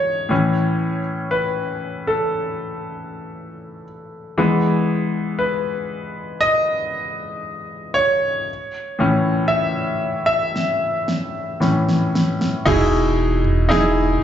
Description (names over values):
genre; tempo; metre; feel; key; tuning
pop ballad; 58 BPM; 4/4; straight; E major; A4 = 440 Hz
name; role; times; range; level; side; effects
bright grand piano; accompaniment; 0.0-14.2 s; A2 to E5; -19 LUFS; left 1 dB; slapback echo
smooth R&B drum kit; drums; 10.6-13.9 s; crash cymbal, kick drum, snare drum, toms; -23 LUFS; right 1 dB; overdrive, slapback echo
saturated sub bass; bass; 12.7-14.2 s; E1; -21 LUFS; right 1 dB; none
room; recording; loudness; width
light reverb; live gig heard through the venue's PA, club reverb, nothing above 7.7 kHz; -17 LUFS; side -10 dB against mid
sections
0.0-12.7 A section; 12.7-14.2 B section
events
grand piano solo 0.0-12.7; drum fill 10.6-12.7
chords
0.3 A; 4.4 E; 8.5 A; 12.7 Emaj7